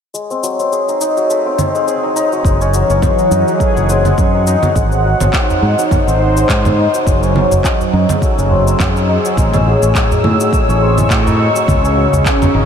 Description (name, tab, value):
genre	organic downtempo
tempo	104 BPM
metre	4/4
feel	swing 56% on 16ths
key	G# phrygian dominant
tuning	A4 = 440 Hz
part	santur	arpeggios	0.1-12.7 s	F#3 to G#4	-16 LUFS	left 2 dB	low-pass filter, analog delay
part	electronic shaker, congas and handclaps	drums	0.1-12.5 s	none	-20 LUFS	right 1 dB	overdrive
part	warm analog pad	sustained chords	2.4-12.7 s	A2 to E6	-17 LUFS	right 1 dB	lush chorus, sidechain pumping
part	fretless electric bass	bass	2.4-12.7 s	F#1 to A2	-15 LUFS	equal	sidechain pumping
part	electronic kick drum	drums	2.4-12.4 s	none	-16 LUFS	equal	none
part	udu	percussion	5.5-12.5 s	none	-21 LUFS	right 2 dB	none
room	moderate huge ambient reverb, RT60 7.2 s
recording	dreamy mix soaked in reverb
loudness	-11 LUFS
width	side -7 dB against mid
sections	0.1-4.8 A section; 4.8-12.7 B section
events	filter sweep on santur 0.1-4.8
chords	0.1 G#7b9; 2.5 F#m9; 4.8 G#7b9; 7.1 F#m9; 9.4 Amaj7; 11.7 C#m